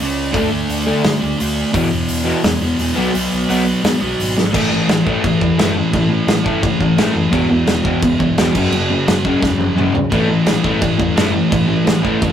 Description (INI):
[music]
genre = punk rock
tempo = 172 BPM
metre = 4/4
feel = straight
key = unclear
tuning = A4 = 441 Hz
[part]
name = thick fuzz guitar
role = riff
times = 0.0-12.3 s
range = E2 to D4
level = -19 LUFS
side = right 1 dB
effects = distortion
[part]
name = picked electric bass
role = bass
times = 0.0-12.3 s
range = E1 to D3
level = -25 LUFS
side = equal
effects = none
[part]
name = loose indie drum kit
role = drums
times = 0.0-12.3 s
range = crash cymbal, hi-hat, kick drum, snare drum, toms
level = -19 LUFS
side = equal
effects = none
[part]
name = crunchy overdriven guitar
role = riff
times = 0.3-12.3 s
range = E2 to D4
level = -17 LUFS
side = left 1 dB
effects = none
[sound]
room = light reverb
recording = rough rehearsal-room recording, warm saturation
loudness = -13 LUFS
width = side -9 dB against mid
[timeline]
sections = 0.0-4.5 A section; 4.5-12.3 B section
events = half time 0.0-4.5; drum fill 4.4, 9.4-10.1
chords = 0.3 D5; 1.7 E5; 3.0 B5; 4.5 A5; 7.3 E5; 8.5 F#5; 10.1 A5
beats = | 0.34 0.69 1.04 1.39 | 1.74 2.09 2.44 2.78 | 3.13 3.48 3.83 4.18 | 4.53 4.88 5.23 5.58 | 5.92 6.27 6.62 6.97 | 7.32 7.67 8.02 8.37 | 8.71 9.06 9.41 9.76 | 10.11 10.46 10.81 11.16 | 11.51 11.86 12.21